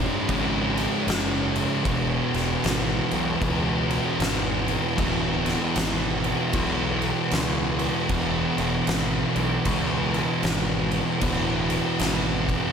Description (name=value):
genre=stoner and doom metal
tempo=77 BPM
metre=4/4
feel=swing 62% on 8ths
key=unclear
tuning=A4 = 441 Hz
part: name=mellow tonewheel organ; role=sustained chords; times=0.0-12.7 s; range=C#3 to F#4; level=-36 LUFS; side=left 2 dB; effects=none
part: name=thick fuzz guitar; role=riff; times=0.0-12.7 s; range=C#2 to E3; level=-28 LUFS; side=left 12 dB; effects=distortion
part: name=thick fuzz guitar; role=riff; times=0.0-12.7 s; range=C#2 to E3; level=-27 LUFS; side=right 8 dB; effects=distortion
part: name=fuzz picked electric bass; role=bass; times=0.0-12.6 s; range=D1 to C#2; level=-30 LUFS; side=left 1 dB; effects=overdrive
part: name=oversized low-tuned drum kit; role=drums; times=0.3-12.6 s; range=crash cymbal, kick drum, snare drum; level=-27 LUFS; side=equal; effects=none
room=little or no reverb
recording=none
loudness=-22 LUFS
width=side -7 dB against mid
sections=0.0-12.7 A section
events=none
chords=0.0 C#5; 1.9 E